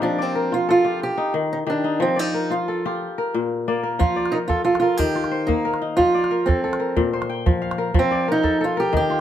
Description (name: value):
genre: west african traditional, West African string and xylophone music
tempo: 121 BPM (dotted quarters)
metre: 12/8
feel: straight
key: F mixolydian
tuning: A4 = 442 Hz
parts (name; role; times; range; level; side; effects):
- fingerpicked acoustic archtop guitar; melody; 0.0-9.2 s; C4 to G4; -21 LUFS; right 2 dB; none
- kora; arpeggios; 0.0-9.2 s; Bb2 to G5; -23 LUFS; left 4 dB; none
- calabash; percussion; 4.0-9.2 s; none; -22 LUFS; right 2 dB; none
room: moderate small room reverb, RT60 0.6 s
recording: none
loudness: -19 LUFS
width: side -10 dB against mid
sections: 0.0-4.0 A section; 4.0-9.2 B section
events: none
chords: 0.0 F; 1.0 Eb; 2.0 F; 3.0 Bb; 4.0 F; 5.0 Eb; 6.0 F; 7.0 Bb5; 8.0 F